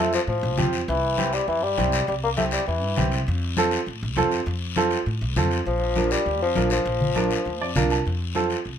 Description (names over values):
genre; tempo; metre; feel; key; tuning
latin, cumbia; 201 BPM; 4/4; straight; F major; A4 = 440 Hz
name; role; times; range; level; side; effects
mellow bassoon; melody; 0.0-3.1, 5.7-7.7 s; E3 to Bb3; -24 LUFS; left 2 dB; plate reverb
clear upright piano; accompaniment; 0.0-8.6 s; C4 to A5; -25 LUFS; right 4 dB; none
upright bass; bass; 0.0-8.8 s; Bb1 to A2; -27 LUFS; equal; none
guiro; percussion; 0.1-8.8 s; none; -31 LUFS; left 7 dB; none
congas; percussion; 0.3-8.5 s; none; -29 LUFS; left 3 dB; none
room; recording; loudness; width
moderate studio ambience, RT60 0.5 s; none; -21 LUFS; side -8 dB against mid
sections
0.0-8.1 A section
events
upright piano fill 7.5-8.1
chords
0.0 F; 0.9 C; 3.3 F; 5.7 Bb; 8.1 F